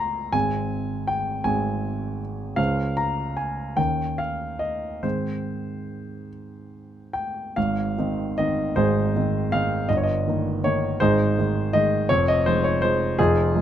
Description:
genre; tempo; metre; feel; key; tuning
classical, romantic character piece for solo piano; 46-55 BPM (dotted quarters); 6/8; rubato; Ab major; A4 = 439 Hz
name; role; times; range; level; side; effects
warm grand piano; solo; 0.0-13.6 s; F1 to C6; -21 LUFS; equal; none
room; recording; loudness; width
little or no reverb; close, detailed microphones; -21 LUFS; side -10 dB against mid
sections
0.0-7.6 A section; 7.6-13.6 A section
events
none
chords
0.3 Ab; 2.6 Db5; 3.8 Eb5; 5.0 Ab; 9.9 Eb/G; 11.0 Ab; 12.1 Fm7

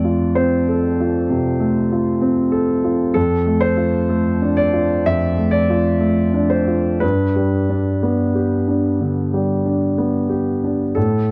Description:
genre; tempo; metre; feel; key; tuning
neoclassical minimalist piano; 60-64 BPM; 4/4; rubato; unclear; A4 = 435 Hz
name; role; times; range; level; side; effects
clear concert grand piano; solo; 0.0-11.3 s; F2 to E5; -18 LUFS; equal; none
room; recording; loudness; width
small room ambience; dry, close 1970s-style studio recording; -18 LUFS; mono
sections
0.0-11.3 A section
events
none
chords
0.0 F; 3.2 Dm/F; 7.0 G

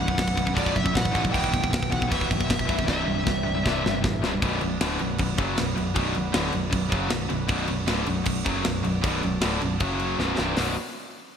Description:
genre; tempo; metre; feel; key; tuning
heavy metal; 156 BPM; 4/4; straight; B phrygian; A4 = 435 Hz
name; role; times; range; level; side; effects
smooth overdriven lead guitar; melody; 0.0-4.0 s; D5 to G5; -29 LUFS; equal; none
pipe organ, cornet; sustained chords; 0.0-10.8 s; C3 to F#5; -38 LUFS; right 1 dB; none
high-gain distorted guitar; riff; 0.0-10.7 s; B1 to F#3; -29 LUFS; right 9 dB; distortion
tight distorted guitar; riff; 0.0-10.7 s; B1 to F#3; -29 LUFS; left 8 dB; distortion
picked electric bass; bass; 0.0-10.8 s; B0 to B1; -30 LUFS; equal; none
tight metal drum kit; drums; 0.1-10.7 s; crash cymbal, hi-hat, kick drum, snare drum; -28 LUFS; equal; none
room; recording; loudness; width
moderate lush hall reverb, RT60 2.2 s; bright 1980s-style digital production; -22 LUFS; side -8 dB against mid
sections
0.0-4.4 A section; 4.4-10.6 B section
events
drum fill 2.9-4.4, 10.2-10.6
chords
0.0 Bm; 1.3 Em/B; 2.9 C; 4.4 Bm; 9.8 F#5; 10.2 Bm

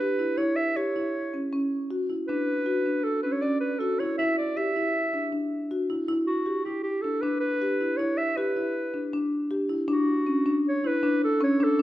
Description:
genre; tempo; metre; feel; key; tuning
contemporary instrumental, chamber music in an uneven meter; 158 BPM; 5/4; straight; E dorian; A4 = 440 Hz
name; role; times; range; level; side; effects
clear clarinet; melody; 0.0-11.8 s; F#4 to E5; -28 LUFS; right 1 dB; none
marimba with medium mallets; arpeggios; 0.0-11.8 s; C#4 to G4; -26 LUFS; equal; none
room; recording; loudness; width
wet recital hall reverb, RT60 1.8 s; recorded in a church or concert hall; -24 LUFS; side -14 dB against mid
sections
0.0-9.9 A section; 9.9-11.8 A section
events
none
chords
0.4 C#m; 2.3 Dmaj7; 4.2 Dsus2; 6.1 Em7; 9.9 E7sus2/C# (rootless)

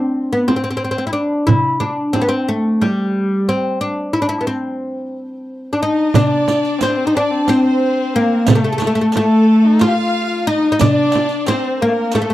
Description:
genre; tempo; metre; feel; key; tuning
Turkish makam ensemble; 180 BPM (eighths); 7/8; straight; D makam kurdi from 6.1 s; A4 = 439 Hz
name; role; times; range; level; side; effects
oud; melody; 0.0-12.3 s; G3 to F4; -15 LUFS; equal; none
darbuka; percussion; 0.2-12.3 s; none; -22 LUFS; left 2 dB; none
frame drum; percussion; 0.5-12.3 s; none; -18 LUFS; right 4 dB; none
clear symphonic violin section; second line; 5.8-12.3 s; A4 to F5; -24 LUFS; right 4 dB; none
rich kamancheh; second line; 5.8-12.3 s; A3 to G4; -23 LUFS; left 6 dB; tape echo
riq; percussion; 6.1-12.3 s; none; -27 LUFS; right 6 dB; none
room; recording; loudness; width
light reverb; dry, close 1970s-style studio recording; -14 LUFS; side -14 dB against mid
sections
0.0-6.1 A section; 6.1-12.3 B section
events
break 3.8-6.1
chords
none

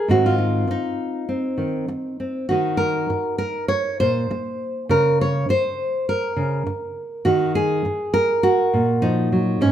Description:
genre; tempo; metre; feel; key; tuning
folk, solo fingerstyle acoustic guitar; 101 BPM; 4/4; straight; unclear; A4 = 440 Hz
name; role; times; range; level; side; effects
nylon-string guitar; solo; 0.0-9.7 s; Ab2 to Db5; -19 LUFS; equal; none
room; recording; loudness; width
moderate large studio reverb, RT60 1.1 s; none; -19 LUFS; side -10 dB against mid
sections
0.0-9.7 A section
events
none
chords
0.1 Ab; 2.5 Ebm; 4.9 N.C.; 7.3 Ebm

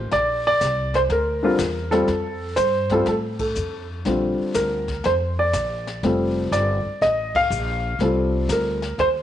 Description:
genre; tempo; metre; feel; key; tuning
jazz piano trio; 122 BPM; 4/4; swing 68% on 8ths; F mixolydian; A4 = 439 Hz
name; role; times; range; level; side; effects
warm upright piano; melody; 0.0-9.1 s; D3 to F5; -20 LUFS; equal; none
upright bass; bass; 0.0-9.2 s; F1 to A2; -27 LUFS; equal; none
jazz brush drum kit; drums; 0.1-9.2 s; brushed snare drum, hi-hat, kick drum, ride cymbal, snare drum; -34 LUFS; left 4 dB; none
room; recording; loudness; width
light reverb, small room reverb; 1960s-style stereo, nothing above 10.4 kHz; -19 LUFS; side -11 dB against mid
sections
0.0-9.2 A section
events
band accent 3.3, 7.3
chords
0.1 Bb; 2.1 F; 4.1 Bb; 6.0 F7

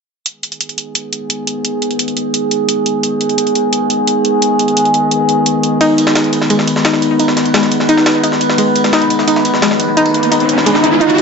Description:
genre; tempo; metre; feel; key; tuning
dark technical drum and bass; 173 BPM; 4/4; straight; G# minor; A4 = 440 Hz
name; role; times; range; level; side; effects
metallic inharmonic drone; sustained chords; 1.0-11.2 s; D#3 to B4; -14 LUFS; equal; chorus, built-in reverb
electronic hi-hat; drums; 0.3-11.2 s; none; -19 LUFS; right 1 dB; overdrive
soft round pluck; arpeggios; 5.8-11.2 s; G#3 to D#4; -14 LUFS; left 1 dB; chorus, digital delay
jungle sampler-style drum kit; drums; 5.8-11.2 s; ride cymbal, snare drum; -18 LUFS; equal; high-pass filter on cymbals, high-pass filter on snare, high-pass filter on room
riser; sound effects; 9.4-11.2 s; none; -16 LUFS; right 2 dB; none
room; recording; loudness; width
moderate plate reverb, RT60 2.2 s; nothing above 7.9 kHz; -11 LUFS; side -5 dB against mid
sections
0.3-11.2 A section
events
filter sweep on synth drone 0.3-11.2; riser 9.4-11.2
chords
0.3 G#m

